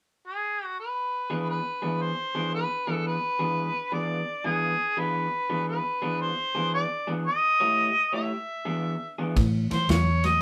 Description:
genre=electric blues shuffle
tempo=114 BPM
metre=4/4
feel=swing 66% on 8ths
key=unclear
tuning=A4 = 441 Hz
part: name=mellow harmonica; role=melody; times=0.3-10.4 s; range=G#4 to E5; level=-29 LUFS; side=equal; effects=none
part: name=electric guitar through a small old amp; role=riff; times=1.3-10.4 s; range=A2 to C#5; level=-32 LUFS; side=equal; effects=none
part: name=vintage muted fingered electric bass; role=bass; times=9.4-10.4 s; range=E2 to A2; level=-26 LUFS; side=equal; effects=none
part: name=natural country drum kit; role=drums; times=9.4-10.3 s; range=kick drum, ride cymbal, snare drum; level=-30 LUFS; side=equal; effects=none
room=moderate studio reverb, RT60 0.5 s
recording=band playing live in one room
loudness=-27 LUFS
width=mono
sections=1.0-9.4 A section; 9.4-10.4 B section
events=none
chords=0.0 N.C.; 1.0 E7; 7.3 A7; 8.3 E7; 9.4 A

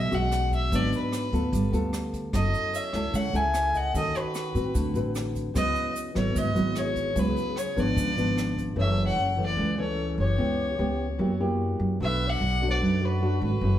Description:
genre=bossa nova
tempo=149 BPM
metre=4/4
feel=straight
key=C# minor, F# minor from 8.8 s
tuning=A4 = 444 Hz
part: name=warm fiddle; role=melody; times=0.0-13.8 s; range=B4 to G#5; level=-29 LUFS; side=left 1 dB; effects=plate reverb
part: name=nylon-string guitar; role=accompaniment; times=0.0-13.8 s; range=F#2 to B4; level=-29 LUFS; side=equal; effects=none
part: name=upright bass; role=bass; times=0.0-13.8 s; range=F#1 to A2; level=-28 LUFS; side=equal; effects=none
part: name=jazz brush drum kit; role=drums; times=0.1-8.7 s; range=hi-hat, kick drum, rim click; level=-36 LUFS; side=equal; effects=none
part: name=tube shaker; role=percussion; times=0.1-8.8 s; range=none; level=-45 LUFS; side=right 6 dB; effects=none
part: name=wooden-headed alto flute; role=second line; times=2.3-13.8 s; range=F#4 to E5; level=-37 LUFS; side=right 2 dB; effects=none
room=wet studio reverb, RT60 0.9 s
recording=heard from further back in the room, faint mains hum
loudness=-24 LUFS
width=side -12 dB against mid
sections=0.0-8.8 A section; 8.8-13.8 B section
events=none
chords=0.0 E69; 0.7 G#m7b5; 1.5 G9; 2.3 F#m7; 3.9 D#m7b5; 4.7 D6; 5.5 C#m11; 8.0 C#7b9; 8.8 F#m7; 10.4 C#m7b5; 11.2 F#7b9; 12.0 Bm7

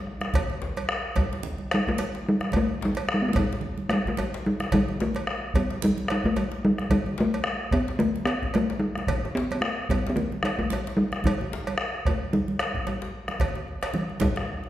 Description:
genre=west african traditional, West African drum ensemble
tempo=110 BPM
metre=4/4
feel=swing 56% on 16ths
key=G major pentatonic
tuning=A4 = 440 Hz
part: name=talking drum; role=melody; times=0.0-14.7 s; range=E3 to B3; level=-26 LUFS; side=equal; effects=none
part: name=bombo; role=percussion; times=0.1-14.5 s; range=none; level=-29 LUFS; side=equal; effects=none
part: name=congas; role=percussion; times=0.2-14.3 s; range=none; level=-35 LUFS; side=right 3 dB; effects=none
part: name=djembe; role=percussion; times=0.2-14.7 s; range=none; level=-35 LUFS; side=left 2 dB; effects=none
part: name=cowbell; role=percussion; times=0.4-14.4 s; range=none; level=-35 LUFS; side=right 4 dB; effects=none
room=wet recital hall reverb, RT60 1.5 s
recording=recorded in a church or concert hall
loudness=-24 LUFS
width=side -13 dB against mid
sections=0.0-13.4 A section; 13.4-14.7 B section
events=none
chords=none

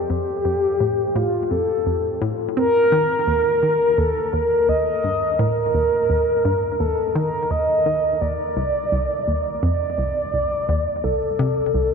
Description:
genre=ambient, sequencer-driven space music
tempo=85 BPM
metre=4/4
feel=straight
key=unclear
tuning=A4 = 442 Hz
part: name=mellow horn-like synth lead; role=melody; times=0.0-11.9 s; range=F4 to Eb5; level=-19 LUFS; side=equal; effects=chorus, ping-pong delay
part: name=hollow square pluck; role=riff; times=0.0-11.9 s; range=C2 to C4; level=-24 LUFS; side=equal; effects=chorus, cassette tape, ping-pong delay
room=wet cathedral reverb, RT60 4.9 s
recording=in a vast, echoing space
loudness=-18 LUFS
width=side -6 dB against mid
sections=0.0-11.9 A section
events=none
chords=0.0 F; 2.9 Eb; 8.6 Cm

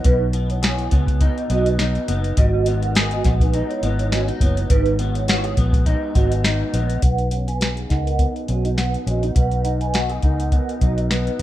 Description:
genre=indie pop, bedroom pop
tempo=103 BPM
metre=4/4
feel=swing 55% on 16ths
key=B major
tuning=A4 = 440 Hz
part: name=vibraphone with soft mallets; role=second line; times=0.0-11.4 s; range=D#4 to G#5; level=-26 LUFS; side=right 4 dB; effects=ensemble chorus, analog delay
part: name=electric guitar through a small old amp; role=accompaniment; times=0.0-11.4 s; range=G#2 to G#4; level=-26 LUFS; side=left 2 dB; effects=ensemble chorus, vibrato effect, low-pass filter
part: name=vintage muted fingered electric bass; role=bass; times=0.0-11.4 s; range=F#1 to C#2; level=-21 LUFS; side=equal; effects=none
part: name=soft vintage rhythm box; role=drums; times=0.0-11.4 s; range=hi-hat, kick drum, snare drum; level=-20 LUFS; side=equal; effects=vintage 12-bit sampler grit
room=little or no reverb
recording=rough home demo mix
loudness=-17 LUFS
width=side -14 dB against mid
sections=0.0-7.0 A section; 7.0-11.4 B section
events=none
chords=0.0 B6

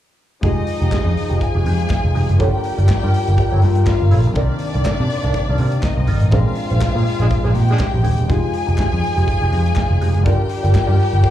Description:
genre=disco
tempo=122 BPM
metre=4/4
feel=swing 56% on 16ths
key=F dorian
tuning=A4 = 436 Hz
part: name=rich studio string section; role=second line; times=0.4-11.3 s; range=D4 to Ab5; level=-24 LUFS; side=left 2 dB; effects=slapback echo
part: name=mellow electric guitar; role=accompaniment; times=0.4-11.3 s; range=Ab3 to D5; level=-28 LUFS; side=right 7 dB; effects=wah, spring reverb, slapback echo
part: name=warm baby grand piano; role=accompaniment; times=0.4-11.3 s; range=Eb3 to Bb4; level=-29 LUFS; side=left 9 dB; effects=slapback echo
part: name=mellow French horn section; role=sustained chords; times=0.4-11.3 s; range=C3 to Bb4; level=-28 LUFS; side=left 2 dB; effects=none
part: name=vintage muted picked electric bass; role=bass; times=0.4-11.2 s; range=Eb1 to C3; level=-16 LUFS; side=equal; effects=none
part: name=modern studio drum kit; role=drums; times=0.4-11.3 s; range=hi-hat, kick drum, snare drum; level=-22 LUFS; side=equal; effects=none
part: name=group handclap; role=percussion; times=0.9-10.9 s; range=none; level=-35 LUFS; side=equal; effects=none
part: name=warm horn section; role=stabs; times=7.2-7.8 s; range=F3 to Ab4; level=-26 LUFS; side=equal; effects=slapback echo
room=little or no reverb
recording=live gig heard through the venue's PA, club reverb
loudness=-14 LUFS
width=side -12 dB against mid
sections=0.4-11.3 A section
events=band accent 6.3-8.3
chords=0.4 Fm9; 2.4 Gm7; 4.4 Cm9; 6.3 Bb9; 8.3 Fm9; 10.3 Gm7

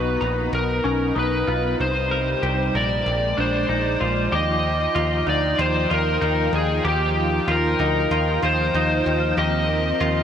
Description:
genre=dream pop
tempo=95 BPM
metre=4/4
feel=straight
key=Eb major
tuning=A4 = 440 Hz
part: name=overdriven slide guitar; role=melody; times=0.0-10.2 s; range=G4 to Eb5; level=-24 LUFS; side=left 1 dB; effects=tape echo
part: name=warm analog pad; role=sustained chords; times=0.0-10.2 s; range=C3 to G5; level=-27 LUFS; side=right 1 dB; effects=chorus, tremolo
part: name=semi-hollow electric guitar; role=arpeggios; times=0.0-10.2 s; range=Db4 to A#5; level=-25 LUFS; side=left 2 dB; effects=wide subtle chorus, tape echo
part: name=plucky analog bass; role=bass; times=0.0-10.2 s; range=A#1 to Eb2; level=-24 LUFS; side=equal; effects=none
part: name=celesta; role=texture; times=1.9-9.7 s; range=C6 to Eb7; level=-36 LUFS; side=right 2 dB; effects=none
room=moderate shimmer reverb, RT60 5.5 s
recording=none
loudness=-19 LUFS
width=side -8 dB against mid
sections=0.0-4.3 A section; 4.3-10.2 B section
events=none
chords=0.0 Bmaj7; 1.8 Cm7; 3.1 Bb9; 4.3 Ebmaj9; 9.4 Cm7

